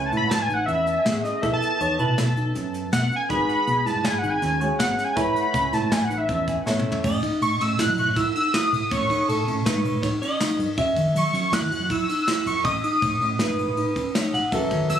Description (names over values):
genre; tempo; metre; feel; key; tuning
progressive instrumental, band music in an uneven meter; 160 BPM; 5/4; straight; A lydian; A4 = 437 Hz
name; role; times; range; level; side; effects
wide unison lead; melody; 0.0-15.0 s; D#5 to F#6; -24 LUFS; equal; digital delay
clean electric guitar; second line; 0.0-15.0 s; G#4 to F#5; -30 LUFS; equal; wide subtle chorus
clear grand piano; accompaniment; 0.0-7.0, 14.5-15.0 s; E3 to E5; -31 LUFS; left 1 dB; none
mellow tine electric piano; arpeggios; 0.0-15.0 s; D#3 to E4; -28 LUFS; right 2 dB; none
deep dub fingered electric bass; bass; 0.0-15.0 s; F#1 to G#3; -27 LUFS; equal; none
soft brush drum kit; drums; 0.1-15.0 s; crash cymbal, hi-hat, kick drum, ride cymbal, snare drum, toms; -28 LUFS; equal; none
room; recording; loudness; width
moderate studio reverb, RT60 0.5 s; recorded on a phone in the room, studio ambience; -20 LUFS; side -9 dB against mid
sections
0.0-7.0 A section; 7.0-15.0 B section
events
analog synth lead solo 0.0-7.0; drum fill 6.7-7.0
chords
0.0 A; 1.4 B7sus4; 3.3 G#m7; 5.2 A; 7.0 A6; 8.9 Badd9/A; 10.8 F#5; 12.7 Badd9/A